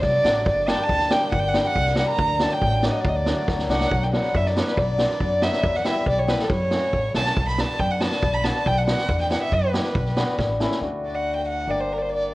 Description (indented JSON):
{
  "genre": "klezmer",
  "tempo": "139 BPM",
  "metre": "2/4",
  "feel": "straight",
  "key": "D phrygian dominant, B minor from 3.9 s",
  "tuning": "A4 = 440 Hz",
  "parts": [
    { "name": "rich violin", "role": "melody", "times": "0.0-12.3 s", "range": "A4 to B5", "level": "-24 LUFS", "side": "right 1 dB", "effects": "none" },
    { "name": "hammered dulcimer", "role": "accompaniment", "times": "0.0-12.3 s", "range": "F#3 to G4", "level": "-25 LUFS", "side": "left 2 dB", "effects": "none" },
    { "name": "upright bass", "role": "bass", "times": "0.0-12.3 s", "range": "G1 to F#2", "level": "-26 LUFS", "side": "equal", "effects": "none" },
    { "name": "street-band drum kit", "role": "drums", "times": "0.0-10.8 s", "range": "kick drum, snare drum", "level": "-26 LUFS", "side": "right 1 dB", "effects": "none" }
  ],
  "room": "moderate recital hall reverb, RT60 1.4 s",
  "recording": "worn, warbling old tape, cassette tape, warbly pitch drift",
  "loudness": "-20 LUFS",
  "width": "side -18 dB against mid",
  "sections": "0.0-3.9 A section; 3.9-10.8 B section; 10.8-12.3 C section",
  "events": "drum fill 3.5-3.9, 10.4-10.8",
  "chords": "0.5 Gm; 2.2 D; 3.9 Bm; 5.6 Em; 6.5 F#m; 7.4 Bm; 9.1 Em; 10.0 Bm; 10.4 A; 10.8 D; 11.7 Gm"
}